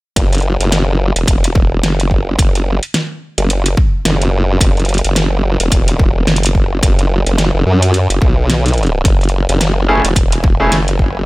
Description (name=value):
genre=glitch hop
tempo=108 BPM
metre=4/4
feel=swing 58% on 16ths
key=F# minor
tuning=A4 = 440 Hz
part: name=formant-sweep wobble bass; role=bass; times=0.2-11.3 s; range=E1 to F#2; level=-14 LUFS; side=equal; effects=chorus
part: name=electronic kick drum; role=drums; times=0.2-11.1 s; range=none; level=-13 LUFS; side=equal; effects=studio reverb
part: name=pop drum kit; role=drums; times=0.2-11.0 s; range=hi-hat, snare drum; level=-17 LUFS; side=equal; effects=studio reverb
part: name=bright grand piano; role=stabs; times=9.9-10.7 s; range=A3 to G#4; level=-15 LUFS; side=equal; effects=vintage 12-bit sampler grit, sidechain pumping, digital delay
room=little or no reverb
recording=none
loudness=-11 LUFS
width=side -21 dB against mid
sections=0.2-11.3 A section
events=none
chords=0.2 F#7(no3)